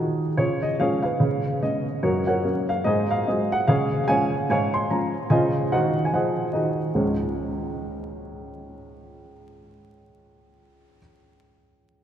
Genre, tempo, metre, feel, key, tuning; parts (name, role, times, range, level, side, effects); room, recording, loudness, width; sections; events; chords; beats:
jazz, stride piano; 146 BPM; 4/4; swing 60% on 8ths; Db major; A4 = 441 Hz
dark upright piano; solo; 0.0-12.0 s; Db2 to C6; -21 LUFS; equal
wet cathedral reverb, RT60 4.4 s; recorded in a church or concert hall, vinyl crackle; -21 LUFS; side -10 dB against mid
0.4-7.0 A section; 7.0-10.2 B section
0.4 Db; 2.0 Gb; 2.8 Ab7; 3.7 Db; 5.3 Ab7/Db; 7.0 Db
| 0.38 0.79 1.20 1.61 | 2.02 2.44 2.85 3.26 | 3.67 4.08 4.49 4.90 | 5.32 5.73 6.14 6.55 | 6.96 7.37 7.78 8.19 | 8.61 9.02 9.43 9.84